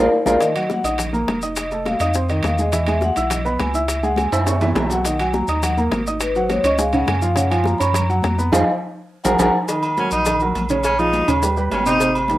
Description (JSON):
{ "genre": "Afro-Cuban jazz", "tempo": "207 BPM", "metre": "4/4", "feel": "straight", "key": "Eb minor", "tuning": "A4 = 440 Hz", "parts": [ { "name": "vibraphone with medium mallets", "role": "melody", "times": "0.0-9.5 s", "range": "Bb4 to Cb6", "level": "-21 LUFS", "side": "left 1 dB", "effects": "none" }, { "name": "warm baby grand piano", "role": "accompaniment", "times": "0.0-12.4 s", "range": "C3 to E6", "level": "-22 LUFS", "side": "right 1 dB", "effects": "slapback echo" }, { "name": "rubbery square bass", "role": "bass", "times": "0.0-12.4 s", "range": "F1 to Gb2", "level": "-23 LUFS", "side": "equal", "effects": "none" }, { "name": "bongos and cowbell", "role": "percussion", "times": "0.3-12.4 s", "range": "none", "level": "-27 LUFS", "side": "left 4 dB", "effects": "none" }, { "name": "congas", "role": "percussion", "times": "0.3-12.4 s", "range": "none", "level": "-29 LUFS", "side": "equal", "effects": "slapback echo" }, { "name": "maracas", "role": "percussion", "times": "0.3-12.4 s", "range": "none", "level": "-32 LUFS", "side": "left 4 dB", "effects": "none" }, { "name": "timbales and agogo bells", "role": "percussion", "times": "0.3-12.3 s", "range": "none", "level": "-25 LUFS", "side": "right 3 dB", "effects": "slapback echo" }, { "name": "clear tenor saxophone", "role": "second line", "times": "10.0-12.1 s", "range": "Db4 to Eb4", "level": "-20 LUFS", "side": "left 2 dB", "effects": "none" } ], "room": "little or no reverb", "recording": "recorded outdoors, with no room sound", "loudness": "-16 LUFS", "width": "side -15 dB against mid", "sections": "0.4-9.7 A section; 9.7-12.4 A section", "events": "drum fill 0.0-0.4, 4.3-5.1, 9.0-9.7; band accent 0.0-0.4, 8.5-9.7; vibraphone solo 0.0-9.7; tenor saxophone solo 9.7-12.4", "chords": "0.4 Ebmadd9; 1.6 F7; 2.7 Eadd9; 3.9 Dbm; 4.5 Gb5; 5.1 Bmaj7; 6.2 Ab5; 6.8 Db; 7.4 Gbmaj7; 8.5 Fm7; 9.1 Gbadd9/Bb; 9.7 Ebm7; 10.8 Bbm7; 11.4 Ebaug", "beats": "0.12 | 0.41 0.70 0.99 1.28 | 1.57 1.86 2.15 2.44 | 2.73 3.02 3.31 3.60 | 3.89 4.18 4.47 4.76 | 5.05 5.34 5.63 5.92 | 6.21 6.50 6.79 7.08 | 7.37 7.66 7.95 8.24 | 8.53 8.82 9.11 9.40 | 9.69 9.98 10.27 10.55 | 10.85 11.13 11.43 11.72 | 12.01 12.30" }